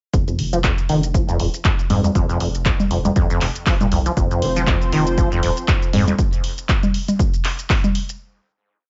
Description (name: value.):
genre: acid house.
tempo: 119 BPM.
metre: 4/4.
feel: swing 56% on 16ths.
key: F minor.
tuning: A4 = 437 Hz.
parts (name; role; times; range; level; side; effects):
acid bass, saw; riff; 0.1-6.1 s; F2 to Ab3; -24 LUFS; equal; lush chorus, sidechain pumping, tape echo.
saturated sub bass; bass; 0.1-6.1 s; Eb1 to F2; -27 LUFS; equal; sidechain pumping.
electronic kick drum; drums; 0.1-7.8 s; none; -22 LUFS; equal; small room ambience.
punchy analog drum machine; drums; 0.1-8.2 s; congas, handclaps, hi-hat, shaker; -25 LUFS; equal; small room ambience.
lush unison pad; sustained chords; 4.2-6.2 s; F3 to C5; -27 LUFS; equal; chorus, sidechain pumping.
room: moderate studio reverb, RT60 0.6 s.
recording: nothing above 7.7 kHz.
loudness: -19 LUFS.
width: mono.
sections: 0.1-8.2 groove.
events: filter sweep on acid bass 0.1-6.2.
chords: 0.1 F5.